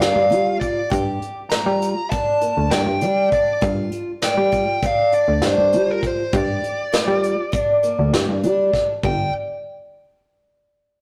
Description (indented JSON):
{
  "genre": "progressive instrumental, band music in an uneven meter",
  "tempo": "200 BPM (eighths)",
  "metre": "9/8",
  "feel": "straight",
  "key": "G minor",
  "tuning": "A4 = 440 Hz",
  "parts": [
    { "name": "dark smooth lead guitar", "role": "melody", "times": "0.0-9.3 s", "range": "Bb4 to Bb5", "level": "-26 LUFS", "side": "equal", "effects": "overdrive" },
    { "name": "picked twelve-string acoustic guitar", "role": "arpeggios", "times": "0.0-9.3 s", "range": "G3 to G4", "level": "-24 LUFS", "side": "equal", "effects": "none" },
    { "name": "plucky analog bass", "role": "bass", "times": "0.0-9.3 s", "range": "G1 to G3", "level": "-24 LUFS", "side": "equal", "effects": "none" },
    { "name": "vintage brush drum kit", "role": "drums", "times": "0.0-9.2 s", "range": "hi-hat, kick drum, snare drum", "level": "-27 LUFS", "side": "equal", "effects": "none" }
  ],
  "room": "wet stone room reverb, RT60 1.2 s",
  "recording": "rough rehearsal-room recording, tube saturation",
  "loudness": "-19 LUFS",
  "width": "mono",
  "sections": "0.0-9.0 A section; 9.0-11.0 B section",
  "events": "none",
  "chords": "0.0 Gm7; 9.0 N.C."
}